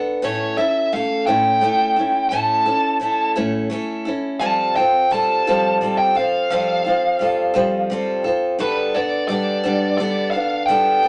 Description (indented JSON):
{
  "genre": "rock",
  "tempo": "57 BPM (dotted quarters)",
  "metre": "6/8",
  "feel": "straight",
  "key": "unclear",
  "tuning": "A4 = 440 Hz",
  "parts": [
    { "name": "picked steel-string acoustic guitar", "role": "accompaniment", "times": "0.0-11.1 s", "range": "A2 to A4", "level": "-23 LUFS", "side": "equal", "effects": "none" },
    { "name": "dark smooth lead guitar", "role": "melody", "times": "0.2-11.1 s", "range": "B4 to A5", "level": "-21 LUFS", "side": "equal", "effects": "overdrive" }
  ],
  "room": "moderate studio ambience, RT60 0.5 s",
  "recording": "nothing above 10.4 kHz",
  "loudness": "-19 LUFS",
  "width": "mono",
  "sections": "0.0-11.1 A section",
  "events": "none",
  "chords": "0.2 A; 4.4 Fadd9; 8.6 Gadd9"
}